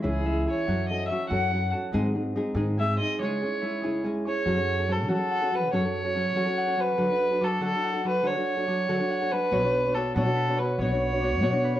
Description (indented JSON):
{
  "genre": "mexican folk, mariachi",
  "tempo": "95 BPM (dotted quarters)",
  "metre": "6/8",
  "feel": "straight",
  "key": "C# minor, F# minor from 4.5 s",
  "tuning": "A4 = 440 Hz",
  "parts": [
    { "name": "nylon-string guitar", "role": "accompaniment", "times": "0.0-11.8 s", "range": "G#2 to C#5", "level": "-29 LUFS", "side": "left 1 dB", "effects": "none" },
    { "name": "concert harp", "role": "arpeggios", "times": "0.0-11.8 s", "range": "E3 to C#6", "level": "-31 LUFS", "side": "left 1 dB", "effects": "slapback echo" },
    { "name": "upright bass", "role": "bass", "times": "0.0-11.8 s", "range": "B1 to F#3", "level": "-30 LUFS", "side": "equal", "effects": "none" },
    { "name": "dark violin", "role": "melody", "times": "0.1-11.8 s", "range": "G#4 to F#5", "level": "-27 LUFS", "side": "right 1 dB", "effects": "none" }
  ],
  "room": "moderate studio reverb, RT60 0.6 s",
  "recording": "worn, warbling old tape, cassette tape, warbly pitch drift",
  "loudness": "-24 LUFS",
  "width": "side -12 dB against mid",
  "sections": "0.0-4.5 A section; 4.5-11.8 B section",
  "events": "break 3.2-4.5",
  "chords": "0.0 C#m; 0.7 F#m; 1.9 G#; 3.2 C#m; 4.5 F#m; 7.0 D; 9.5 Bmadd9",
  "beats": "0.03 | 0.67 1.30 | 1.94 2.56 | 3.19 3.83 | 4.46 5.10 | 5.73 6.36 | 6.99 7.62 | 8.25 8.88 | 9.52 10.16 | 10.79 11.42"
}